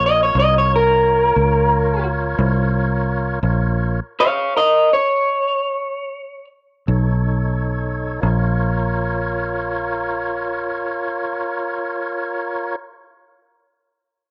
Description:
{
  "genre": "slow blues",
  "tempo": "42-59 BPM (dotted quarters)",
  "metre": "12/8",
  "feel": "straight",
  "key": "Bb minor",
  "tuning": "A4 = 439 Hz",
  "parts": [
    { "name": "electric guitar through a small old amp", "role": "melody", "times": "0.0-6.4 s", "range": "Bb4 to F5", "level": "-18 LUFS", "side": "equal", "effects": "cassette tape" },
    { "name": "tonewheel organ", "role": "sustained chords", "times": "0.0-12.8 s", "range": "D#4 to Db5", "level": "-26 LUFS", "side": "equal", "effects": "slow rotary speaker, cassette tape" },
    { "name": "fingered electric bass", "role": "bass", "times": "0.0-12.8 s", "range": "Bb1 to Db2", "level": "-22 LUFS", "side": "equal", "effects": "none" }
  ],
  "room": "light reverb, digital ambience",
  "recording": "home recording on cassette",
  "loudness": "-19 LUFS",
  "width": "mono",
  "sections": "0.0-8.2 A section; 8.2-13.9 B section",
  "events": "clean electric guitar solo 0.0-8.2; slowing down 2.1-8.2; stop 3.4-6.9",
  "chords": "0.0 Bbm; 6.9 B7; 8.2 Bbm"
}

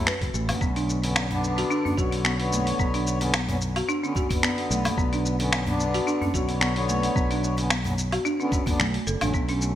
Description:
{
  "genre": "organic downtempo",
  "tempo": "110 BPM",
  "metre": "4/4",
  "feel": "swing 54% on 16ths",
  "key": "B minor",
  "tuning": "A4 = 442 Hz",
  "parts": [
    { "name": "hand-pumped harmonium", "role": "accompaniment", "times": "0.0-9.7 s", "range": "D3 to C#5", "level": "-29 LUFS", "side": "left 2 dB", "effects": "sidechain pumping, digital delay, shimmer reverb" },
    { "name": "folk marimba with hard mallets", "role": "arpeggios", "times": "0.1-9.6 s", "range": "A3 to B4", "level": "-28 LUFS", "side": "equal", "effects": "digital delay, shimmer reverb" },
    { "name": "dusty soul sampler-style drum kit", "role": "drums", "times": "0.1-9.7 s", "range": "finger snaps, hi-hat, shaker, woodblock", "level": "-29 LUFS", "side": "equal", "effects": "small room reverb, gated reverb" },
    { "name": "fretless electric bass", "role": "bass", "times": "0.2-9.8 s", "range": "F#1 to B1", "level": "-28 LUFS", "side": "equal", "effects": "sidechain pumping" },
    { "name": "electronic kick drum", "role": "drums", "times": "0.2-9.5 s", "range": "none", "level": "-27 LUFS", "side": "equal", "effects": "small room reverb" },
    { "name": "djembe", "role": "percussion", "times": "0.2-9.3 s", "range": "none", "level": "-35 LUFS", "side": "left 1 dB", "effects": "none" }
  ],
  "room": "moderate lush hall reverb, RT60 1.6 s, small room ambience",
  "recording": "bright 1980s-style digital production",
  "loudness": "-22 LUFS",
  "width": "side -11 dB against mid",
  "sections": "0.0-9.8 A section",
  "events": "none",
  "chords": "0.0 F#m/B"
}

